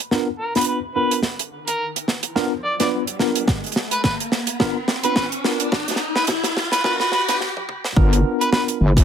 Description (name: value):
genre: glitch hop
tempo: 107 BPM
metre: 4/4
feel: swing 57% on 16ths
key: unclear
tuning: A4 = 440 Hz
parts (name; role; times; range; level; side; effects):
- riser; sound effects; 1.0-7.4 s; none; -28 LUFS; left 1 dB; none
- tine electric piano; stabs; 0.1-8.8 s; B3 to B4; -24 LUFS; left 1 dB; medium stereo tremolo, vintage 12-bit sampler grit, sidechain pumping, low-pass filter, tape echo
- deep reggae drum kit; drums; 0.1-9.0 s; hi-hat, snare drum, toms; -22 LUFS; right 2 dB; none
- mellow harmonica; melody; 0.4-8.6 s; Bb4 to D5; -24 LUFS; equal; low-pass filter, tape echo
- electronic kick drum; drums; 3.5-9.0 s; none; -19 LUFS; equal; none
- wobble bass; bass; 8.0-9.0 s; G1; -16 LUFS; equal; chorus, overdrive
room: moderate studio reverb, RT60 0.5 s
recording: high-pass filter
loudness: -18 LUFS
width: side -8 dB against mid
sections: 0.0-8.0 A section; 8.0-9.0 B section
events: build-up 0.0-8.0; drum fill 0.0-7.4, 7.4-8.0; filter sweep on tine electric piano 0.0-8.0; riser 1.0-7.4; stop 7.4-8.0; drop 8.0-9.0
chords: 0.0 Bdim; 8.0 G7#9